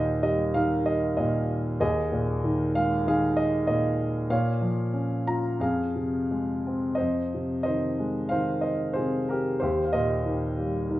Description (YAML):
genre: classical, lyrical solo piano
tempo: 85-97 BPM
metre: 4/4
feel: rubato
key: F minor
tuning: A4 = 440 Hz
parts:
  - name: warm grand piano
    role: solo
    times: 0.0-11.0 s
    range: Eb2 to Bb5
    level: -24 LUFS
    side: equal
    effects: none
room: moderate recital hall reverb, RT60 1.6 s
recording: minimal, uncompressed stereo recording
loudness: -24 LUFS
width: side -15 dB against mid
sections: 0.0-7.0 A section; 7.0-11.0 A section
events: none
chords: 0.0 Cm7/Eb; 1.8 Ebsus4; 4.3 Bbm; 5.6 Fm; 7.0 Fm7; 9.6 Cm7/Eb